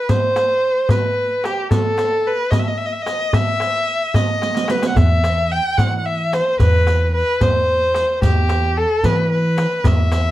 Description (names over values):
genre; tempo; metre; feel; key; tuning
Arabic maqam ensemble; 74 BPM (dotted quarters); 6/8; straight; E maqam nahawand; A4 = 439 Hz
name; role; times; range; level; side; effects
warm violin; melody; 0.0-10.3 s; G4 to G5; -18 LUFS; equal; slapback echo
darbuka; percussion; 0.1-10.2 s; none; -20 LUFS; left 1 dB; none
riq; percussion; 0.1-10.2 s; none; -26 LUFS; right 4 dB; none
upright bass; bass; 5.0-10.3 s; E2 to E3; -18 LUFS; equal; none
room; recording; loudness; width
light reverb; dry, close 1970s-style studio recording; -15 LUFS; side -14 dB against mid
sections
0.0-10.3 A section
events
drum fill 4.4-5.0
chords
none